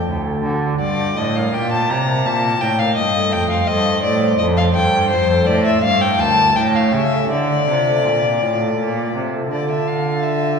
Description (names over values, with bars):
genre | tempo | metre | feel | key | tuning
classical, baroque-style sonata movement with continuo | 83 BPM | 3/4 | straight | D minor from 5.1 s | A4 = 440 Hz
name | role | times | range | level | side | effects
warm violin | melody | 0.0-10.6 s | C5 to Bb5 | -18 LUFS | left 3 dB | none
pipe organ, flutes | accompaniment | 0.0-10.6 s | D2 to G5 | -23 LUFS | right 1 dB | none
warm cello | bass | 0.0-10.6 s | D2 to D3 | -20 LUFS | right 1 dB | none
room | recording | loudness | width
wet church reverb, RT60 2.6 s | recorded in a church or concert hall | -15 LUFS | side -6 dB against mid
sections
0.0-9.5 A section; 9.5-10.6 B section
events
none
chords
0.1 D; 0.8 Gm; 3.0 F9; 5.1 F; 5.8 Gm; 6.6 A7; 7.3 Dm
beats
0.07 | 0.81 1.53 2.25 | 2.97 3.68 4.39 | 5.11 5.83 6.56 | 7.30 8.04 8.78 | 9.51 10.24